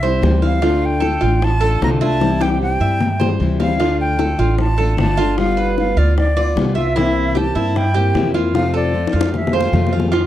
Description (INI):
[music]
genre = latin, Cuban son and guajira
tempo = 152 BPM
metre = 4/4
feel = straight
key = F major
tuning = A4 = 440 Hz
[part]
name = bright reedy concert flute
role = melody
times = 0.0-9.9 s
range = D5 to Bb5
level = -22 LUFS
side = left 1 dB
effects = none
[part]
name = fingerpicked plugged-in steel-string acoustic guitar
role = accompaniment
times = 0.0-10.1 s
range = C3 to F4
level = -20 LUFS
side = left 4 dB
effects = none
[part]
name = Cuban tres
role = arpeggios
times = 0.0-10.3 s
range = E4 to F5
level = -22 LUFS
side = right 4 dB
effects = none
[part]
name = upright bass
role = bass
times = 0.0-10.3 s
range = G1 to G2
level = -19 LUFS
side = right 1 dB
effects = none
[part]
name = bongos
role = percussion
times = 0.0-10.3 s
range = none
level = -23 LUFS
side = left 4 dB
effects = none
[sound]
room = little or no reverb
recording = dry, close 1970s-style studio recording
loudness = -14 LUFS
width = side -12 dB against mid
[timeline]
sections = 0.0-10.1 A section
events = drum fill 2.2-3.8, 8.5-10.1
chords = 0.0 C; 0.6 Dm; 2.2 C; 3.8 Dm; 5.4 G7; 7.0 C7; 8.5 F